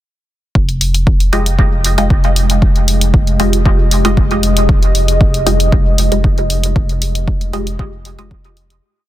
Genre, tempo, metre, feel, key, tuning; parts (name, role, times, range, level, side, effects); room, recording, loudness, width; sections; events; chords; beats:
dub techno; 116 BPM; 4/4; straight; F minor; A4 = 440 Hz
deep dark ambient pad; sustained chords; 1.9-8.8 s; Ab3 to Eb5; -20 LUFS; equal; chorus, built-in reverb, sidechain pumping
soft dub sub bass; bass; 0.6-8.8 s; F1; -16 LUFS; equal; sidechain pumping
electronic kick drum; drums; 0.6-8.4 s; -13 LUFS; equal
electronic hi-hat; drums; 0.7-8.8 s; -19 LUFS; left 1 dB
filtered dub chord stab; stabs; 1.3-8.8 s; Ab3 to Eb5; -19 LUFS; right 1 dB; phaser, sidechain pumping, dub echo
digital ambience; dense, heavily limited modern master; -11 LUFS; side -14 dB against mid
0.6-8.8 groove
fade-out 6.1-8.8
0.6 Fm9
| 0.55 1.07 1.59 2.10 | 2.62 3.14 3.65 4.17 | 4.69 5.21 5.72 6.24 | 6.76 7.28 7.79 8.31